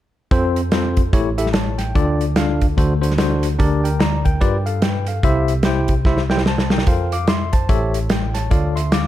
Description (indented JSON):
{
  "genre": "uptempo gospel",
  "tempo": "146 BPM",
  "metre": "4/4",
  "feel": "swing 60% on 8ths",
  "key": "F major",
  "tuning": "A4 = 440 Hz",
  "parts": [
    { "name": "bell-like tine electric piano", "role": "accompaniment", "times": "0.3-9.1 s", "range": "A1 to D6", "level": "-18 LUFS", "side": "left 1 dB", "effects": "medium stereo tremolo" },
    { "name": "natural country drum kit", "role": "drums", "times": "0.3-9.0 s", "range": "hi-hat, kick drum, snare drum", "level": "-19 LUFS", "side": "equal", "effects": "none" }
  ],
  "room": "light reverb",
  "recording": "none",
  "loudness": "-16 LUFS",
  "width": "side -13 dB against mid",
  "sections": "0.3-6.9 A section; 6.9-9.1 B section",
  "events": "drum fill 6.1-6.9",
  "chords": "0.3 F; 1.1 A7; 2.0 Dm; 2.8 D7; 3.6 Gm/D; 4.4 G7; 5.2 C; 6.9 F; 7.7 A7; 8.5 Dm"
}